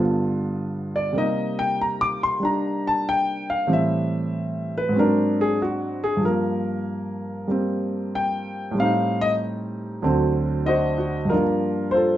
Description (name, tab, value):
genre	jazz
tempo	95 BPM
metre	4/4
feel	swing 69% on 8ths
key	G minor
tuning	A4 = 443 Hz
part	warm concert grand piano	solo	0.0-12.2 s	D2 to D6	-21 LUFS	equal	none
room	wet studio reverb, RT60 0.7 s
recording	rough home demo mix, nothing above 7.8 kHz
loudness	-21 LUFS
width	side -12 dB against mid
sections	0.0-11.3 A section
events	grand piano solo 0.0-11.3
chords	0.0 G7; 1.1 Cm7; 3.7 Am7; 5.0 Ab7#11; 6.2 Gm7; 8.8 Am7b5; 10.0 D7; 11.3 Gm9